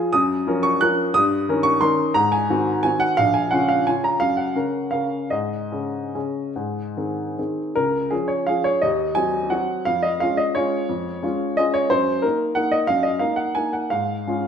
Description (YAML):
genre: classical, piano waltz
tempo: 138-196 BPM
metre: 3/4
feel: rubato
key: Db major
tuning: A4 = 440 Hz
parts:
  - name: clear upright piano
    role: solo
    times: 0.0-14.5 s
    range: Bb1 to Gb6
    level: -19 LUFS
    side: equal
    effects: none
room: moderate recital hall reverb, RT60 1.4 s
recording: none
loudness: -19 LUFS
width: side -7 dB against mid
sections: 0.0-7.8 A section; 7.8-14.5 B section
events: none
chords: 0.1 Gbmaj7; 1.1 Eb7/G; 2.1 Ab7; 3.2 Bbm; 4.2 Gb; 5.3 Absus4; 6.6 Ab; 7.8 Db; 8.8 Cdim/Eb; 9.9 Db/F; 11.9 Ebm/Gb; 13.9 Db/Ab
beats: | 0.14 0.46 0.80 | 1.14 1.47 1.81 | 2.15 2.49 2.83 | 3.18 3.51 3.86 | 4.20 4.54 4.92 | 5.32 5.72 6.15 | 6.57 6.97 7.38 | 7.76 8.12 8.48 | 8.82 9.16 9.51 | 9.86 10.21 10.56 | 10.90 11.23 11.58 | 11.92 12.24 12.57 | 12.89 13.21 13.56 | 13.92 14.28